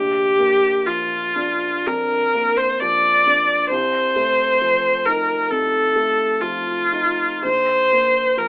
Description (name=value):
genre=classical, romantic duo for viola and grand piano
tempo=55-68 BPM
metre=4/4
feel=rubato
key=unclear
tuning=A4 = 440 Hz
part: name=rich viola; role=melody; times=0.0-8.5 s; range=F4 to D5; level=-16 LUFS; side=equal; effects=none
part: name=dark baby grand piano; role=accompaniment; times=0.0-8.5 s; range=Bb1 to Eb4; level=-28 LUFS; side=right 1 dB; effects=none
room=light reverb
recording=telephone sound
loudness=-16 LUFS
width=side -24 dB against mid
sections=0.0-8.5 A section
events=none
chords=0.0 Bb; 3.7 F7/C; 7.4 N.C.